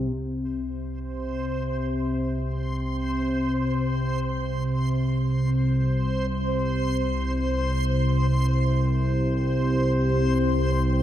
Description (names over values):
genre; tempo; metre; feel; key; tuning
dark ambient drone; free time; none; none; unclear; A4 = 440 Hz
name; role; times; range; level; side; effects
analog drone; drone; 0.0-11.0 s; C2 to C3; -23 LUFS; equal; chorus
backwards swelling texture; texture; 1.1-11.0 s; C5; -30 LUFS; right 1 dB; built-in reverb, shimmer reverb
room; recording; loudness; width
wet spring reverb, RT60 2.8 s; cassette tape; -22 LUFS; side -11 dB against mid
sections
0.1-11.0 A section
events
none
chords
none